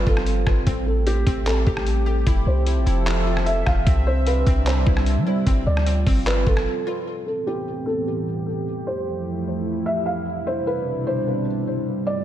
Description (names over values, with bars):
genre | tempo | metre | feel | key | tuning
hip hop, atmospheric cloud-rap | 150 BPM | 4/4 | half-time | A minor | A4 = 441 Hz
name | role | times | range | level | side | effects
felt-muted upright piano | melody | 0.0-12.2 s | G4 to F5 | -26 LUFS | equal | low-pass filter, ping-pong delay
dark analog pad | sustained chords | 0.0-12.2 s | F2 to E5 | -26 LUFS | right 2 dB | chorus, sidechain pumping, low-pass filter
glassy wavetable pluck | arpeggios | 0.0-7.1 s | C4 to G4 | -33 LUFS | left 1 dB | chorus, ping-pong delay
clean 808-style bass | bass | 0.0-6.7 s | F1 to G3 | -20 LUFS | equal | none
trip hop sampler-style drum kit | drums | 0.1-6.7 s | handclaps, hi-hat, kick drum, rim click | -24 LUFS | equal | vintage 12-bit sampler grit
room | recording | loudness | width
light reverb, digital ambience | none | -19 LUFS | side -12 dB against mid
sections
0.0-7.1 A section; 7.1-12.2 B section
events
break 6.7-7.1; filter sweep 7.1-12.2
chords
0.0 G9sus4; 0.7 Am7; 2.3 Fmaj7; 3.9 Cmaj7; 5.5 G9sus4; 7.1 Am7; 8.7 Fmaj7; 10.3 Cmaj7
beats
0.27 | 0.67 1.07 1.47 1.87 | 2.27 2.67 3.07 3.47 | 3.87 4.27 4.67 5.07 | 5.47 5.87 6.27 6.67 | 7.07 7.47 7.87 8.27 | 8.67 9.07 9.47 9.87 | 10.27 10.67 11.07 11.47 | 11.87